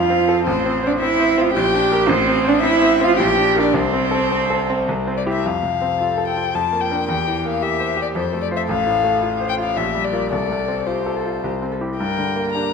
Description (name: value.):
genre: quick classical-period movement for piano trio.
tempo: 110 BPM.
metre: 3/4.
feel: straight.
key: F major.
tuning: A4 = 439 Hz.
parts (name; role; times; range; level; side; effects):
dark violin; melody; 0.0-12.7 s; C5 to Bb5; -22 LUFS; left 9 dB; none.
rich cello; second line; 0.0-12.7 s; C4 to Bb4; -20 LUFS; right 5 dB; none.
bright concert grand piano; accompaniment; 0.0-12.7 s; A1 to C5; -21 LUFS; equal; none.
room: wet scoring stage reverb, RT60 1.5 s.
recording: dark, warm production.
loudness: -16 LUFS.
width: side -5 dB against mid.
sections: 0.0-5.4 A section; 5.4-12.7 B section.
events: none.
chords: 0.5 Am; 1.5 Gm/Bb; 2.1 Amadd11; 3.2 Gm/Bb; 3.7 Am/C; 4.9 C; 5.4 F; 6.5 Gm7/F; 7.1 C7/E; 8.2 F; 8.7 F/A; 9.8 Bb6; 10.3 F/C; 11.4 C; 12.0 Gm.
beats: | 0.47 1.01 1.55 | 2.09 2.63 3.18 | 3.75 4.32 4.88 | 5.45 6.00 6.54 | 7.08 7.62 8.16 | 8.69 9.23 9.77 | 10.32 10.87 11.43 | 11.98 12.54.